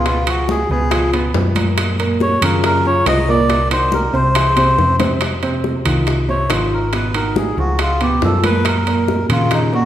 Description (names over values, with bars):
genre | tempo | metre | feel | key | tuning
Afro-Cuban jazz | 140 BPM | 4/4 | straight | F minor from 5.2 s | A4 = 441 Hz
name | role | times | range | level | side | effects
melodica | melody | 0.0-9.9 s | Eb4 to Eb5 | -18 LUFS | equal | none
warm baby grand piano | accompaniment | 0.0-9.9 s | Bb2 to C5 | -20 LUFS | right 2 dB | none
hollow-body short-scale fingered electric bass | bass | 0.0-9.9 s | Ab1 to Bb2 | -19 LUFS | left 1 dB | none
bongos | percussion | 0.1-9.9 s | none | -25 LUFS | left 5 dB | none
congas | percussion | 0.1-9.9 s | none | -26 LUFS | left 2 dB | none
timbales | percussion | 0.1-9.7 s | none | -23 LUFS | right 4 dB | none
room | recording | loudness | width
wet recital hall reverb, RT60 1.8 s | recorded in a church or concert hall | -14 LUFS | side -11 dB against mid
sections
0.0-5.2 A section; 5.2-9.9 B section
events
drum fill 4.6-5.2; melodica solo 5.2-9.9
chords
0.1 Db6; 1.8 Gbmaj7; 3.5 Cm7b5; 4.4 Caug; 5.2 Fm7; 6.9 Abm7; 7.8 Db7; 8.7 Gbmaj7